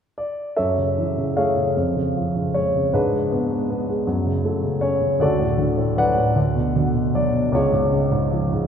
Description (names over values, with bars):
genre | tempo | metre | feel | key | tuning
classical, lyrical solo piano | 51 BPM (dotted quarters) | 6/8 | rubato | F# minor | A4 = 439 Hz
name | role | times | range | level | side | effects
warm concert grand piano | solo | 0.2-8.7 s | C#2 to F#5 | -18 LUFS | equal | none
room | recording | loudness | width
wet cathedral reverb, RT60 4.5 s | recorded in a church or concert hall | -18 LUFS | side -7 dB against mid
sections
0.6-8.7 A section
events
none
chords
0.0 N.C.; 0.6 F#m7; 1.8 C#/E#; 2.9 G#dim; 4.1 F#madd9; 5.2 D; 6.4 Bm/D; 7.5 C#